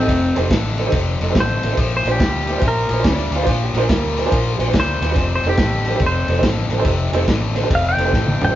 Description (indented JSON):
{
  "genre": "electric blues shuffle",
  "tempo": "142 BPM",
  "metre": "4/4",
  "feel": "swing 65% on 8ths",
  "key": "F mixolydian",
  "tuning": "A4 = 438 Hz",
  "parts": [
    { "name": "clean lap steel guitar", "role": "melody", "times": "0.0-8.6 s", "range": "C4 to G5", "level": "-21 LUFS", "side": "left 1 dB", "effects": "none" },
    { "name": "warm baby grand piano", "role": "accompaniment", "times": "0.0-8.6 s", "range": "D4 to Eb5", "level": "-23 LUFS", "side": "right 3 dB", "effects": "none" },
    { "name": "cranked stack guitar", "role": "riff", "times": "0.0-8.5 s", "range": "F2 to G3", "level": "-24 LUFS", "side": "left 5 dB", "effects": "overdrive" },
    { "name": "vintage muted fingered electric bass", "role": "bass", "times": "0.0-8.5 s", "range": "F1 to Eb2", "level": "-22 LUFS", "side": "equal", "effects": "none" },
    { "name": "vintage drum kit", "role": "drums", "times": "0.1-8.5 s", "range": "kick drum, ride cymbal, snare drum, toms", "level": "-20 LUFS", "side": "equal", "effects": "none" },
    { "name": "electric guitar through a small old amp", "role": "second line", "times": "3.1-4.6 s", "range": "D4 to Bb4", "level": "-25 LUFS", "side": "right 2 dB", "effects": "none" }
  ],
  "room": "moderate stone room reverb, RT60 1.3 s",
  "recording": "band playing live in one room, nothing above 7.5 kHz",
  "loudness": "-15 LUFS",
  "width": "side -13 dB against mid",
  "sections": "0.0-8.6 A section",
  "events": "drum fill 8.1-8.6",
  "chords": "0.0 F7; 1.8 Bb7; 5.2 F7"
}